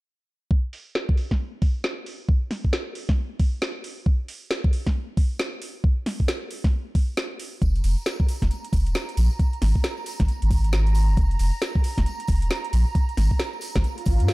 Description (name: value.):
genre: UK garage, two-step garage.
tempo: 135 BPM.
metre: 4/4.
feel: swing 62% on 16ths.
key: unclear.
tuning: A4 = 440 Hz.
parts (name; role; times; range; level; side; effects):
electronic kick drum; drums; 0.5-14.2 s; none; -21 LUFS; equal; overdrive.
garage drum kit; drums; 0.7-14.3 s; hi-hat, snare drum; -30 LUFS; equal; overdrive, low-pass filter on hats, low-pass filter on snare.
warm analog pad; sustained chords; 8.0-14.3 s; Bb5; -36 LUFS; right 5 dB; chorus, sidechain pumping.
soft dub sub bass; bass; 7.6-14.3 s; Eb1 to Ab2; -20 LUFS; equal; sidechain pumping.
tambourine; percussion; 7.6-14.3 s; none; -44 LUFS; left 2 dB; none.
swell; sound effects; 14.0-14.3 s; none; -32 LUFS; right 1 dB; none.
room: digital ambience.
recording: dark, warm production.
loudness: -21 LUFS.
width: side -21 dB against mid.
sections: 0.5-14.3 A section.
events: swell 14.0-14.3.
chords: 0.5 N.C.; 7.6 Ebsus2 (rootless); 9.4 Absus2; 11.2 Ebsus2 (rootless); 13.0 Absus2.